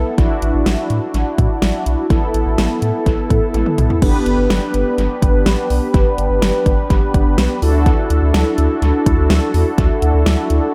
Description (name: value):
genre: synth-pop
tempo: 125 BPM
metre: 4/4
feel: straight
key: D major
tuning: A4 = 439 Hz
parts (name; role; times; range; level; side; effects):
- mellow synth brass; accompaniment; 0.0-10.7 s; B3 to B4; -20 LUFS; equal; chorus, phaser, dub echo
- round analog bass; bass; 0.0-10.6 s; G1 to A2; -19 LUFS; equal; none
- deep house drum kit; drums; 0.2-10.6 s; crash cymbal, hi-hat, kick drum, snare drum, toms; -20 LUFS; equal; dub echo
room: moderate echo chamber reverb, RT60 1.3 s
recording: echo-heavy mix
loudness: -16 LUFS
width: mono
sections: 0.0-4.0 A section; 4.0-10.7 B section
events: drum fill 3.5-4.0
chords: 0.2 Dadd9/A; 2.1 Asus2; 4.0 G; 7.6 Dadd9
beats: | 0.18 0.66 1.14 1.62 | 2.10 2.58 3.06 3.54 | 4.02 4.50 4.98 5.46 | 5.94 6.42 6.90 7.38 | 7.86 8.34 8.82 9.30 | 9.78 10.26 10.74